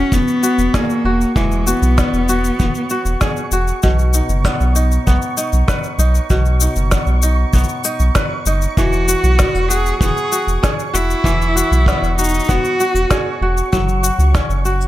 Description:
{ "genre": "folktronica", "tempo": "97 BPM", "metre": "4/4", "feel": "straight", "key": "E major", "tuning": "A4 = 444 Hz", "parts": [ { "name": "rich cello", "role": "melody", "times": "0.0-3.5, 8.8-13.4 s", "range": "G#3 to G#4", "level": "-19 LUFS", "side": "equal", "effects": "tape echo" }, { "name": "kora", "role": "arpeggios", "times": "0.0-14.9 s", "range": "B2 to B4", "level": "-21 LUFS", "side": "equal", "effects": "tape echo" }, { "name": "round analog bass", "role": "bass", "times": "0.0-14.9 s", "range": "E1 to C#2", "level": "-16 LUFS", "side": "equal", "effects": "none" }, { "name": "flickering grainy texture", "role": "texture", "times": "0.1-14.9 s", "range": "C#6", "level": "-28 LUFS", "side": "right 3 dB", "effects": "built-in reverb" }, { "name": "electronic shaker and snare drum", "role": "drums", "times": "0.1-14.9 s", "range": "none", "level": "-22 LUFS", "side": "left 2 dB", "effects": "overdrive" }, { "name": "kick drum", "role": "drums", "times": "0.1-14.5 s", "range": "none", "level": "-19 LUFS", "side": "equal", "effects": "none" } ], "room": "light reverb, small room reverb", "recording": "none", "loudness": "-13 LUFS", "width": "side -15 dB against mid", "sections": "0.0-14.9 A section", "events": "none", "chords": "0.0 Eadd9; 3.8 B; 8.8 Eadd9; 13.7 F#5", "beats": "0.12 0.74 | 1.36 1.97 2.59 3.21 | 3.83 4.45 5.07 5.69 | 6.30 6.92 7.54 8.16 | 8.78 9.40 10.02 10.63 | 11.25 11.87 12.49 13.11 | 13.73 14.35" }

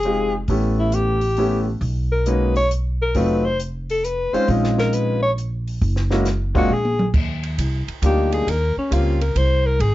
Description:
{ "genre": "jazz, small-group swing and bop", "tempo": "135 BPM", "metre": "3/4", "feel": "swing 67% on 8ths", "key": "unclear", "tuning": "A4 = 440 Hz", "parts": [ { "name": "breathy alto saxophone", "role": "melody", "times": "0.0-9.9 s", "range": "Db4 to C#5", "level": "-21 LUFS", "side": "left 2 dB", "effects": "none" }, { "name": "upright bass", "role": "bass", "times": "0.0-9.9 s", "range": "F1 to Eb2", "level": "-21 LUFS", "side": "equal", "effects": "none" }, { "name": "compact cocktail drum kit", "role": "drums", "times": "0.0-9.9 s", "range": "crash cymbal, hi-hat, kick drum, ride cymbal, snare drum, toms", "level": "-26 LUFS", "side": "equal", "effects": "none" }, { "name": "clear grand piano", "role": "accompaniment", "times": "0.1-9.2 s", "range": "Gb3 to G4", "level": "-22 LUFS", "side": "left 1 dB", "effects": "none" } ], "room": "light reverb", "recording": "dark, warm production, nothing above 7.7 kHz", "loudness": "-18 LUFS", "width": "side -16 dB against mid", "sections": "0.0-7.1 A section; 7.1-9.9 B section", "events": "drum fill 6.7-7.1; alto saxophone solo 7.1-9.9", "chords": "0.5 A9; 1.8 Bmaj13; 3.2 F7b9; 4.5 Bbm11; 5.8 Gb9; 6.7 Absus2/Bb; 7.1 Ebmaj7; 8.5 Eb13", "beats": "0.04 | 0.49 0.93 1.38 | 1.82 2.27 2.71 | 3.16 3.60 4.04 | 4.49 4.93 5.38 | 5.82 6.26 6.71 | 7.15 7.59 8.03 | 8.47 8.92 9.36 | 9.80" }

